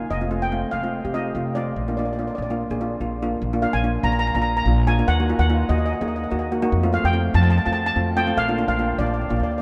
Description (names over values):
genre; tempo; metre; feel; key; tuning
calypso; 145 BPM; 4/4; straight; unclear; A4 = 440 Hz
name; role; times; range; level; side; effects
steel pan; accompaniment; 0.0-9.5 s; A3 to Ab4; -27 LUFS; equal; none
upright bass; bass; 0.0-9.6 s; F1 to F2; -25 LUFS; equal; none
steel pan; melody; 0.1-9.6 s; D5 to Bb5; -28 LUFS; equal; none
room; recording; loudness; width
wet cathedral reverb, RT60 7.4 s; in a vast, echoing space; -22 LUFS; mono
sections
0.0-3.4 A section; 3.4-9.6 B section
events
none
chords
0.1 F7; 1.8 Bb; 5.1 Ebm; 6.7 F; 8.4 Bb